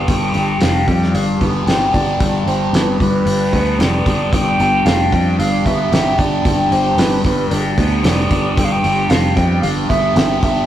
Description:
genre	psychedelic rock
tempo	113 BPM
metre	4/4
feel	straight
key	G mixolydian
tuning	A4 = 440 Hz
part	concert flute	melody	0.0-10.7 s	B4 to G5	-21 LUFS	right 1 dB	tape echo
part	fuzz guitar	riff	0.0-10.7 s	G2 to G4	-18 LUFS	left 1 dB	distortion, phaser
part	fingered electric bass	bass	0.0-10.7 s	F1 to F2	-19 LUFS	equal	none
part	cloth-damped thuddy drum kit	drums	0.1-10.6 s	hi-hat, kick drum, snare drum	-19 LUFS	equal	none
part	tonewheel organ	sustained chords	4.3-10.7 s	G3 to D4	-26 LUFS	right 5 dB	chorus vibrato, stopped rotary speaker
room	moderate stone room reverb, RT60 1.3 s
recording	rough rehearsal-room recording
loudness	-13 LUFS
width	side -11 dB against mid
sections	0.0-10.7 A section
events	none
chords	0.0 G

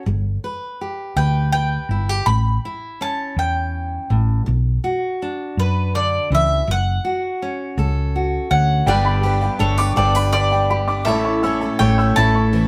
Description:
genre	indie folk with a building arrangement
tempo	54 BPM (dotted quarters)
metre	6/8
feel	straight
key	unclear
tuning	A4 = 440 Hz
part	fingerpicked steel-string acoustic guitar	accompaniment	0.0-12.7 s	A2 to C#5	-26 LUFS	equal	none
part	hollow-body short-scale fingered electric bass	bass	0.1-12.7 s	F#1 to F#2	-22 LUFS	equal	none
part	bowl-back mandolin	melody	1.2-12.7 s	B4 to B5	-24 LUFS	equal	none
part	bright grand piano	accompaniment	8.9-12.7 s	G1 to D5	-33 LUFS	equal	none
part	picked twelve-string acoustic guitar	accompaniment	8.9-12.7 s	G2 to A4	-29 LUFS	equal	none
part	warm upright piano	arpeggios	8.9-12.7 s	G5 to E6	-25 LUFS	equal	none
room	moderate studio reverb, RT60 0.8 s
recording	band playing live in one room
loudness	-19 LUFS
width	mono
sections	0.0-8.9 A section; 8.9-12.7 B section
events	none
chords	0.1 G; 2.3 A; 4.5 Bm; 6.7 F#m; 8.9 G; 11.1 A

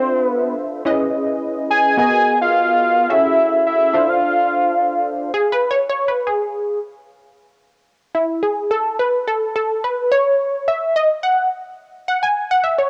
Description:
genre	funk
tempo	107 BPM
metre	4/4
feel	straight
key	unclear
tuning	A4 = 440 Hz
part	fat analog lead	melody	0.0-5.1 s	C5 to G#5	-18 LUFS	equal	none
part	funky polysynth comp	accompaniment	0.0-12.9 s	B3 to G#5	-20 LUFS	equal	chorus, cassette tape
room	moderate spring reverb, RT60 2.6 s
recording	home recording on cassette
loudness	-18 LUFS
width	mono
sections	0.0-5.3 A section; 5.3-12.9 B section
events	analog polysynth solo 5.3-12.9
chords	0.0 Dm9; 0.9 C#m9; 2.0 G#m9; 3.1 F#m9; 3.9 Dm7; 5.3 N.C.

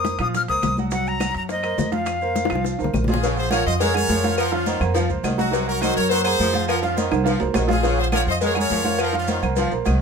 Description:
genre	latin, salsa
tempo	208 BPM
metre	4/4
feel	straight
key	Bb minor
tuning	A4 = 441 Hz
part	bright silver concert flute	melody	0.0-2.9 s	Eb5 to F6	-24 LUFS	left 4 dB	none
part	bright concert grand piano	accompaniment	0.0-10.0 s	F3 to Gb5	-25 LUFS	right 5 dB	none
part	upright bass	bass	0.0-10.0 s	Bb1 to Bb2	-25 LUFS	equal	none
part	bongos and cowbell	percussion	0.0-10.0 s	none	-28 LUFS	left 8 dB	none
part	congas	percussion	0.0-10.0 s	none	-28 LUFS	left 3 dB	none
part	timbales and agogo bells	percussion	0.0-10.0 s	none	-29 LUFS	right 8 dB	none
part	maracas	percussion	0.1-10.0 s	none	-38 LUFS	right 6 dB	none
part	claves	percussion	0.2-10.0 s	none	-36 LUFS	left 3 dB	none
part	brilliant horn section	melody	3.1-9.4 s	Db4 to Eb5	-23 LUFS	left 2 dB	none
part	clear saxophone section	second line	3.2-10.0 s	C3 to Ab3	-29 LUFS	left 2 dB	none
room	moderate studio ambience, RT60 0.5 s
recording	minimal, uncompressed stereo recording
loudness	-18 LUFS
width	side -6 dB against mid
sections	0.0-3.2 A section; 3.2-10.0 B section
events	drum fill 2.4-3.2, 7.1-7.8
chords	0.0 F7sus4; 0.9 Cm7b5; 2.1 Fsus4; 3.2 Bbm7; 4.4 F7sus4; 5.5 Cm7b5; 6.7 F7sus4; 7.8 Bbm7; 9.0 F7sus4

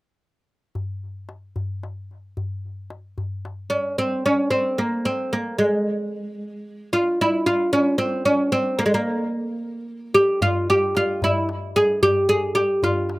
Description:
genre	Arabic maqam ensemble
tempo	74 BPM (dotted quarters)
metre	6/8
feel	straight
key	C maqam hijaz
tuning	A4 = 440 Hz
part	darbuka	percussion	0.8-3.8, 10.4-13.2 s	none	-29 LUFS	left 2 dB	none
part	oud	melody	3.7-13.1 s	Ab3 to Ab4	-19 LUFS	equal	none
room	little or no reverb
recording	recorded outdoors, with no room sound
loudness	-19 LUFS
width	side -21 dB against mid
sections	0.8-4.0 A section; 4.0-13.2 B section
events	none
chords	none

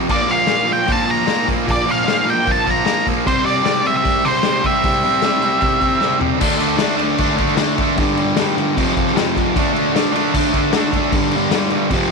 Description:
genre	garage rock duo or trio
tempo	153 BPM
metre	4/4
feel	straight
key	D minor from 6.4 s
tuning	A4 = 440 Hz
part	fuzz guitar	riff	0.0-12.1 s	F2 to D4	-17 LUFS	right 1 dB	distortion
part	octave-fuzz lead guitar	melody	0.1-6.2 s	C5 to Bb5	-18 LUFS	right 2 dB	distortion
part	raw garage drum kit	drums	0.1-12.0 s	crash cymbal, hi-hat, kick drum, snare drum, toms	-21 LUFS	left 4 dB	none
room	light reverb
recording	1960s-style stereo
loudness	-14 LUFS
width	side -4 dB against mid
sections	0.0-6.4 A section; 6.4-12.1 B section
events	drum fill 6.0-6.4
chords	0.1 Bb5; 3.3 C; 6.4 D5; 8.0 G5; 8.8 F5; 9.6 D5; 11.1 G5

